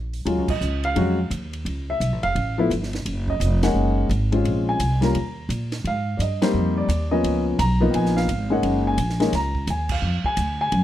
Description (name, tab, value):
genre	jazz piano trio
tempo	172 BPM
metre	4/4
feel	swing 63% on 8ths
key	Eb minor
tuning	A4 = 440 Hz
part	upright bass	bass	0.0-10.8 s	F1 to Bb2	-23 LUFS	equal	none
part	compact cocktail drum kit	drums	0.1-10.8 s	crash cymbal, hi-hat, kick drum, ride cymbal, snare drum	-32 LUFS	right 2 dB	none
part	dark upright piano	melody	0.3-10.8 s	F3 to Bb5	-22 LUFS	left 2 dB	none
room	light reverb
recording	dark, warm production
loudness	-20 LUFS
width	side -12 dB against mid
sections	0.3-10.8 A section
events	band accent 0.4, 3.6, 6.4, 9.9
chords	0.3 Ebm11; 1.7 Dbaug; 3.1 Gb6; 4.5 Bbm9; 5.1 Eb5; 5.8 Abmaj9; 7.2 Db13; 8.6 Gb69; 10.0 Ddim